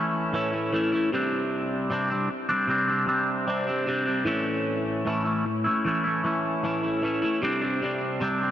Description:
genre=rock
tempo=76 BPM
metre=4/4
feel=straight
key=unclear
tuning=A4 = 440 Hz
part: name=twangy electric guitar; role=solo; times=0.0-8.5 s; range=A2 to E4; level=-24 LUFS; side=equal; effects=phaser, analog delay
room=wet huge ambient reverb, RT60 4.2 s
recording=dreamy mix soaked in reverb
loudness=-24 LUFS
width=side -11 dB against mid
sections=0.0-7.4 A section; 7.4-8.5 B section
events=none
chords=0.0 A; 1.1 Csus2; 4.3 A; 7.4 Csus2

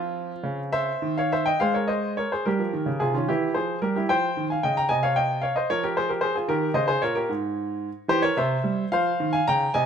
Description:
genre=classical, baroque-style suite movement for grand piano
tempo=74 BPM (dotted quarters)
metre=6/8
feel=rubato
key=F minor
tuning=A4 = 440 Hz
part: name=clear baby grand piano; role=solo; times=0.0-9.9 s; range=Ab2 to Bb5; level=-22 LUFS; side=equal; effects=none
room=moderate stone room reverb, RT60 1.2 s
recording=none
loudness=-22 LUFS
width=side -7 dB against mid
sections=0.0-1.6 A section; 1.6-9.9 A section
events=none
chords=0.0 F5; 1.6 Fm/Ab; 3.3 C7b13/E; 4.1 F5; 4.9 Ab/C; 6.5 Eb7; 7.3 N.C.; 8.1 C7; 8.9 F5

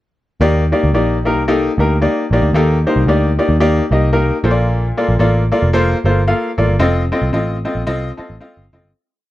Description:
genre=uptempo 1960s-style soul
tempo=113 BPM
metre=4/4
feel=swing 58% on 8ths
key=unclear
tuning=A4 = 437 Hz
part: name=bright upright piano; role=accompaniment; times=0.4-8.9 s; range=Bb2 to A5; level=-15 LUFS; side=left 1 dB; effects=none
part: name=vintage muted picked electric bass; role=bass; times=0.4-8.9 s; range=F1 to Eb2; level=-16 LUFS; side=equal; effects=none
room=small room reverb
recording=dark, warm production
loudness=-13 LUFS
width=side -15 dB against mid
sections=0.4-8.9 verse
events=fade-out 6.8-8.9; upright piano fill 7.9-8.9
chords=0.4 Ebmaj7; 4.4 Bbmaj7; 6.8 F7

